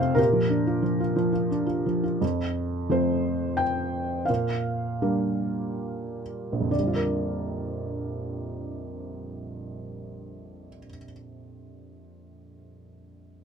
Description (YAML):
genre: classical, lyrical solo piano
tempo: 61-92 BPM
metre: 3/4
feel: rubato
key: Bb major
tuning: A4 = 440 Hz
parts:
  - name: felt-muted upright piano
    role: solo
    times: 0.0-13.4 s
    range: Bb1 to G5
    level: -25 LUFS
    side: right 1 dB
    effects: none
room: moderate small room reverb, RT60 0.5 s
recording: close, detailed microphones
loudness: -24 LUFS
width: side -6 dB against mid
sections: 0.0-2.2 A section; 2.2-6.7 B section; 6.7-12.4 C section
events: slowing down 2.2-6.7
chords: 0.2 Bb6; 2.2 F; 4.3 Bb6